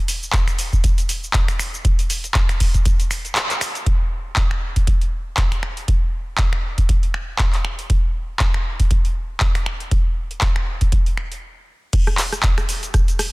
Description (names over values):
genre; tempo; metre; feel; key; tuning
house; 119 BPM; 4/4; swing 56% on 16ths; none; none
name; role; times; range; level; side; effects
booming analog drum machine; drums; 0.1-13.3 s; cabasa, crash cymbal, finger snaps, handclaps, hi-hat, rim click; -23 LUFS; equal; soft clipping on snare
electronic kick drum; drums; 0.3-13.1 s; none; -18 LUFS; equal; none
room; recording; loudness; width
digital ambience; dense, heavily limited modern master; -17 LUFS; side -23 dB against mid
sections
0.0-3.9 A section; 3.9-11.9 B section; 11.9-13.3 C section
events
kick drops out 3.4-3.9; band accent 3.4; stop 11.4-11.9; drop 11.9-13.3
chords
none